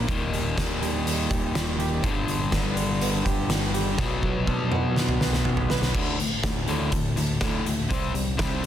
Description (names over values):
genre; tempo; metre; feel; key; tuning
quiet-loud alternative rock; 123 BPM; 4/4; straight; unclear; A4 = 440 Hz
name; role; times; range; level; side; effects
fingerpicked plugged-in swing-style acoustic guitar; arpeggios; 0.0-8.7 s; D2 to B4; -33 LUFS; right 9 dB; none
distorted electric guitar; riff; 0.0-8.7 s; D2 to C4; -28 LUFS; left 4 dB; distortion
growling picked electric bass; bass; 0.0-8.7 s; Eb1 to B2; -30 LUFS; right 1 dB; overdrive
oversized low-tuned drum kit; drums; 0.1-8.7 s; crash cymbal, hi-hat, kick drum, snare drum, toms; -26 LUFS; equal; none
room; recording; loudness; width
light reverb; dense, heavily limited modern master; -22 LUFS; side -10 dB against mid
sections
0.0-5.9 A section; 5.9-8.7 B section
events
drum fill 4.0-5.9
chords
0.1 Eb; 2.0 G; 4.0 Bm; 5.9 D5; 7.9 C5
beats
| 0.09 0.57 1.06 1.55 | 2.04 2.53 3.02 3.50 | 3.99 4.48 4.97 5.46 | 5.95 6.44 6.93 7.42 | 7.91 8.39